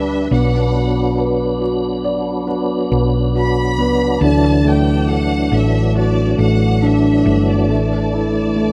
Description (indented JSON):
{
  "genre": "pop ballad",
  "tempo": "69 BPM",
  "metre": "4/4",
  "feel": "straight",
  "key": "D major",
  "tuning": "A4 = 436 Hz",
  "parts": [
    { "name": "warm studio violin section", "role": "melody", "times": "0.0-8.7 s", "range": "D5 to B5", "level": "-28 LUFS", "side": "equal", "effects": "none" },
    { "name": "felt-muted upright piano", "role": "accompaniment", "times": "0.0-8.7 s", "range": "D3 to D5", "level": "-20 LUFS", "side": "equal", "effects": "none" },
    { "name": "tonewheel organ", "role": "sustained chords", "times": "0.0-8.7 s", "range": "E3 to B4", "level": "-22 LUFS", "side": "equal", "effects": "overdrive, chorus vibrato, slow rotary speaker" },
    { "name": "hollow-body short-scale fingered electric bass", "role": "bass", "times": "0.0-8.7 s", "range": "G1 to D2", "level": "-20 LUFS", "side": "equal", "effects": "none" }
  ],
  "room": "little or no reverb",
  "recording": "rough home demo mix",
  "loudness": "-16 LUFS",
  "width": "mono",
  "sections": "0.0-8.7 A section",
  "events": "none",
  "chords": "0.3 Bm; 4.2 Dadd9; 7.7 Asus4"
}